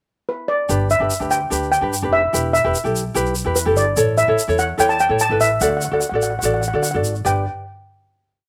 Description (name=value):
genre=calypso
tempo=146 BPM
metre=4/4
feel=straight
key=G major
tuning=A4 = 440 Hz
part: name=steel pan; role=melody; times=0.3-7.5 s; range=B4 to A5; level=-22 LUFS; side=equal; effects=slapback echo
part: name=ukulele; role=accompaniment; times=0.7-7.4 s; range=D4 to D5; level=-23 LUFS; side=equal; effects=slapback echo
part: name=upright bass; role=bass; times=0.7-7.4 s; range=E1 to D3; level=-26 LUFS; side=equal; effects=none
part: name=tube shaker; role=percussion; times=0.7-7.4 s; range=none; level=-28 LUFS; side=equal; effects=none
room=light reverb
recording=recorded outdoors, with no room sound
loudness=-19 LUFS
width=mono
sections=0.0-0.7 pickup bar; 0.7-7.3 verse; 7.3-8.5 final chord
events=none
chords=0.0 N.C.; 0.7 G6; 2.3 Em; 4.0 A; 5.6 D; 7.3 G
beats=0.28 | 0.69 1.10 1.51 1.92 | 2.33 2.74 3.15 3.56 | 3.97 4.38 4.79 5.20 | 5.62 6.03 6.44 6.85 | 7.26